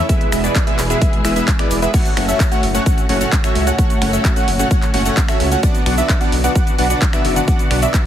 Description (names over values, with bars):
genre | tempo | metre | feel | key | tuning
EDM, festival progressive house | 130 BPM | 4/4 | straight | F# minor | A4 = 441 Hz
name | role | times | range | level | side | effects
dark studio string section | sustained chords | 0.0-8.1 s | A2 to G#4 | -25 LUFS | equal | sidechain pumping
plucky unison lead | arpeggios | 0.0-8.0 s | D5 to F#5 | -23 LUFS | right 2 dB | phaser, wide subtle chorus, sidechain pumping, digital delay
supersaw stab | riff | 0.0-8.0 s | G#3 to F#5 | -20 LUFS | equal | sidechain pumping, digital delay
big-room dance drum kit | drums | 0.1-8.0 s | crash cymbal, finger snaps, handclaps, hi-hat, shaker | -24 LUFS | equal | overdrive
electronic kick drum | drums | 0.1-8.0 s | none | -16 LUFS | equal | overdrive
wide detuned saw bass | bass | 0.3-7.9 s | E1 to C#2 | -20 LUFS | equal | chorus, sidechain pumping
room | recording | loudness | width
light reverb | heavily compressed radio sound | -13 LUFS | side -10 dB against mid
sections
0.0-1.9 A section; 1.9-8.1 A section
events
drop 0.0-1.9, 1.9-8.1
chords
0.1 E; 1.9 F#m; 5.6 Bm